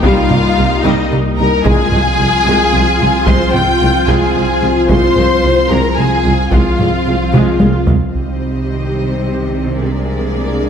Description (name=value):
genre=cinematic, hybrid orchestral and electronic film score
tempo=74 BPM (dotted quarters)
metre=6/8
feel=straight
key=unclear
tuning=A4 = 441 Hz
part: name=warm symphonic violin section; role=melody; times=0.0-7.9 s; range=Eb5 to G6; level=-20 LUFS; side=left 1 dB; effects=none
part: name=warm symphonic violin section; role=second line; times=0.0-10.7 s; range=Eb4 to G5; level=-18 LUFS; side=left 3 dB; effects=none
part: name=warm symphonic viola section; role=accompaniment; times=0.0-10.7 s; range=G3 to Ab4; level=-19 LUFS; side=equal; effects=none
part: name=airy breathy pad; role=sustained chords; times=0.0-10.7 s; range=Eb3 to F5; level=-21 LUFS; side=right 1 dB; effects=chorus
part: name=dark French horn section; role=sustained chords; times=0.0-10.7 s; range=F3 to F4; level=-21 LUFS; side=left 4 dB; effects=none
part: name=dark symphonic double bass section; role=bass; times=0.0-10.7 s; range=C2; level=-20 LUFS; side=right 3 dB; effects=none
part: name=rich symphonic cello section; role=bass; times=0.0-10.7 s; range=C2 to C3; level=-20 LUFS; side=right 3 dB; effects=none
part: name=sub bass with octave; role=bass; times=0.0-10.7 s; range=C2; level=-21 LUFS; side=equal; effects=none
part: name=solo taiko drums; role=drums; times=0.0-9.2 s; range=none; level=-16 LUFS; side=equal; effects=none
room=moderate scoring stage reverb, RT60 1.8 s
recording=none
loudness=-11 LUFS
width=side -7 dB against mid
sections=0.0-8.1 A section; 8.1-10.7 B section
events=drum fill 7.3-8.1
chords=0.0 Eb/C; 1.7 Fm/C; 8.1 Cm; 9.8 Bb7/C